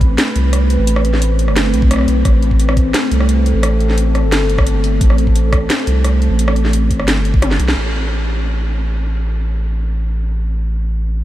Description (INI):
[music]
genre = half-time drum and bass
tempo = 174 BPM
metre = 4/4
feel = half-time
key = A minor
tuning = A4 = 440 Hz
[part]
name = deep dark ambient pad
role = sustained chords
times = 0.0-11.2 s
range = A3 to B4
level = -20 LUFS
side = left 1 dB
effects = chorus, built-in reverb, sidechain pumping
[part]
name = saturated sub bass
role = bass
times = 0.0-11.2 s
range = G1 to C2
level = -15 LUFS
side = equal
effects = none
[part]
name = drum and bass drum kit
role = drums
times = 0.0-7.8 s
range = hi-hat, rim click, snare drum, toms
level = -20 LUFS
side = equal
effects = none
[part]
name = electronic kick drum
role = drums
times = 0.0-7.4 s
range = none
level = -14 LUFS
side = equal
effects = none
[sound]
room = light reverb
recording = none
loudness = -12 LUFS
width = side -14 dB against mid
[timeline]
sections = 0.0-7.8 A section; 7.8-11.2 B section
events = drop 0.0-7.8; drum fill 7.4-7.8; band accent 7.7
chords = 0.0 Amadd9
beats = 0.18 0.53 | 0.87 1.22 1.56 1.91 | 2.25 2.60 2.94 3.29 | 3.63 3.97 4.32 4.66 | 5.01 5.35 5.70 6.04 | 6.39 6.73 7.08 7.42 | 7.77 8.11 8.46 8.80 | 9.15 9.49 9.84 10.18 | 10.53 10.87 11.22